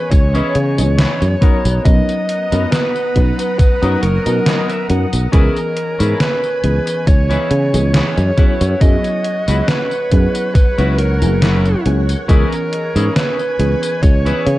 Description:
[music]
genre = vaporwave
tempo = 69 BPM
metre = 4/4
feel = swing 54% on 16ths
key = C# dorian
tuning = A4 = 440 Hz
[part]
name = bluesy overdriven lead guitar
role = melody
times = 0.0-14.6 s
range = A#4 to D#5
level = -20 LUFS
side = equal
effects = distortion, tape echo
[part]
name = mellow FM electric piano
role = accompaniment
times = 0.0-14.6 s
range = E3 to D#5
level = -22 LUFS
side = equal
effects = analog chorus
[part]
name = soft string machine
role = sustained chords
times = 0.0-14.6 s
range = B3 to D#6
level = -29 LUFS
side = equal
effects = ensemble chorus
[part]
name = clean electric guitar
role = riff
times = 0.1-14.5 s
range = B3 to F#5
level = -26 LUFS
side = left 2 dB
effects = lush chorus
[part]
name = sustaining fretless electric bass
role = bass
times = 0.1-14.6 s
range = F#1 to C#3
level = -15 LUFS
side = equal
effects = none
[part]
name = detuned 8-bit digital drum machine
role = drums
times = 0.1-14.6 s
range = hi-hat, snare drum, tambourine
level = -20 LUFS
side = equal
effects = gated reverb
[part]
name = electronic kick drum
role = drums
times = 0.1-14.2 s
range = none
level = -12 LUFS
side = equal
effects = none
[sound]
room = light reverb, digital ambience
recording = cassette tape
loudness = -12 LUFS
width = side -16 dB against mid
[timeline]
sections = 0.0-14.6 A section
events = clean electric guitar fill 3.6-5.3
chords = 0.0 C#m7; 1.4 Bmaj7; 5.3 C#m7; 8.4 F#7sus4; 12.3 C#m7

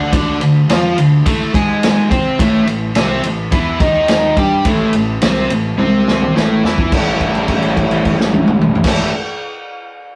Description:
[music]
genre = blues rock power trio and southern rock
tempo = 106 BPM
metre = 4/4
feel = straight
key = unclear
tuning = A4 = 440 Hz
[part]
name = overdriven electric guitar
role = riff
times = 0.0-9.1 s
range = A2 to C5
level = -17 LUFS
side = equal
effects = none
[part]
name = fuzz picked electric bass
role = bass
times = 0.0-9.1 s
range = A1 to C3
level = -25 LUFS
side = equal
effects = overdrive
[part]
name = vintage drum kit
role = drums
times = 0.1-9.0 s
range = crash cymbal, kick drum, ride cymbal, snare drum, toms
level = -19 LUFS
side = equal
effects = none
[sound]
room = wet studio reverb, RT60 0.6 s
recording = rough rehearsal-room recording, warm saturation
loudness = -14 LUFS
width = mono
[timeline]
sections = 0.0-6.9 A section; 6.9-9.2 B section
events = drum fill 5.8-6.9; held note 6.9-8.9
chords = 0.1 Dm7; 2.4 Am7; 6.9 A7

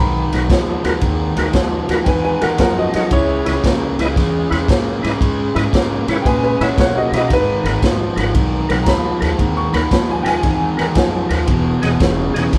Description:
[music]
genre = electric blues shuffle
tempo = 115 BPM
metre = 4/4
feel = swing 67% on 8ths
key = G# minor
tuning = A4 = 440 Hz
[part]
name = bright upright piano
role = second line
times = 0.0-11.3 s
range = E4 to C#6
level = -22 LUFS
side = equal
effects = none
[part]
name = cranked stack guitar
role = riff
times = 0.0-12.6 s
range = E2 to A#3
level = -22 LUFS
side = equal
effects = overdrive
[part]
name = upright bass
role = bass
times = 0.0-12.6 s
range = E1 to B2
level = -24 LUFS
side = equal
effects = none
[part]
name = percussive tonewheel organ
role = accompaniment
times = 0.3-12.4 s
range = E4 to F#5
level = -25 LUFS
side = equal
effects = slow rotary speaker, overdrive, chorus vibrato
[part]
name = crunchy breakbeat drum kit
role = drums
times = 0.3-12.6 s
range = kick drum, ride cymbal, snare drum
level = -21 LUFS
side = equal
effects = none
[sound]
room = moderate large studio reverb, RT60 0.9 s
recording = band playing live in one room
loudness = -16 LUFS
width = mono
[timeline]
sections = 0.0-12.6 A section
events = upright piano solo 0.0-12.6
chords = 0.0 G#m9; 3.1 C#m9; 7.3 G#m9; 11.5 Emaj7

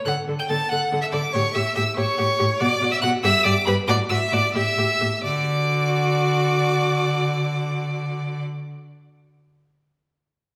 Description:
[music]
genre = quick classical-period movement for string quartet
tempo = 86-95 BPM (dotted quarters)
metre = 6/8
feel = straight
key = D major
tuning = A4 = 440 Hz
[part]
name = clear viola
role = accompaniment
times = 0.0-8.4 s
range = F#4 to A4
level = -29 LUFS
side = equal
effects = none
[part]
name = clear violin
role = melody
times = 0.1-8.4 s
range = B5 to A6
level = -28 LUFS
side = equal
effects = none
[part]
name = rich violin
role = second line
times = 0.1-8.4 s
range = B4 to A5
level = -27 LUFS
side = equal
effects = none
[part]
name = rich cello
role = bass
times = 0.1-8.4 s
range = G2 to D3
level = -27 LUFS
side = equal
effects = none
[sound]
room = wet recital hall reverb, RT60 1.7 s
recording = recorded in a church or concert hall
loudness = -22 LUFS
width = mono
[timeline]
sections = 0.0-5.2 A section; 5.2-8.0 B section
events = slowing down 2.0-5.2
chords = 0.1 D5; 1.3 A7; 2.6 Bm; 3.2 G6; 3.9 Dadd9; 4.6 A5; 5.2 D

